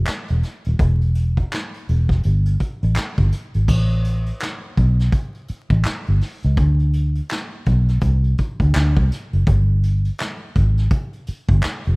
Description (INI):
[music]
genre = R&B, neo-soul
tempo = 83 BPM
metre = 4/4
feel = swing 60% on 16ths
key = A dorian from 3.7 s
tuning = A4 = 440 Hz
[part]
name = vintage muted fingered electric bass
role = bass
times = 0.0-12.0 s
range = D#1 to D2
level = -16 LUFS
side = equal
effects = none
[part]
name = vintage brush drum kit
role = drums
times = 0.1-12.0 s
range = crash cymbal, handclaps, hi-hat, kick drum, snare drum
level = -22 LUFS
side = equal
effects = none
[sound]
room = little or no reverb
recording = rough home demo mix, vinyl crackle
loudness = -17 LUFS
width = side -37 dB against mid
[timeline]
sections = 0.0-3.7 A section; 3.7-12.0 B section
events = none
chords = none